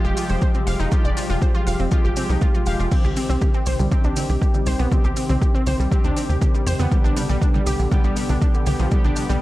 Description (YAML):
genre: melodic techno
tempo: 120 BPM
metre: 4/4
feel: straight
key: C harmonic minor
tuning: A4 = 440 Hz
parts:
  - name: wide unison pluck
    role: arpeggios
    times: 0.0-9.4 s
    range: D3 to F5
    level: -26 LUFS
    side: right 1 dB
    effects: sidechain pumping, dub echo
  - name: analog synth brass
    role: stabs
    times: 0.0-9.4 s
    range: D3 to G4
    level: -27 LUFS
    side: left 2 dB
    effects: chorus, sidechain pumping, dub echo
  - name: tight sequencer bass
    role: bass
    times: 0.0-9.4 s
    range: F1 to F2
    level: -22 LUFS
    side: equal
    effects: tube saturation, sidechain pumping
  - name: swarming drone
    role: drone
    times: 0.1-9.4 s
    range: C3 to G3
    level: -34 LUFS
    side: left 1 dB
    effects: none
  - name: maracas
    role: percussion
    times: 0.0-9.4 s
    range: none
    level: -36 LUFS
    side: right 2 dB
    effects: none
  - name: deep house drum kit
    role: drums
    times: 0.2-9.3 s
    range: congas, crash cymbal, hi-hat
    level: -31 LUFS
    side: right 2 dB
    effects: overdrive
  - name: electronic kick drum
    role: drums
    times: 0.4-9.0 s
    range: none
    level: -19 LUFS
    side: equal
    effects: overdrive
room: little or no reverb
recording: dark, warm production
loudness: -17 LUFS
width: side -17 dB against mid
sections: 0.0-9.4 A section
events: none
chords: 0.0 Fmadd9; 2.9 Cm; 6.9 G/B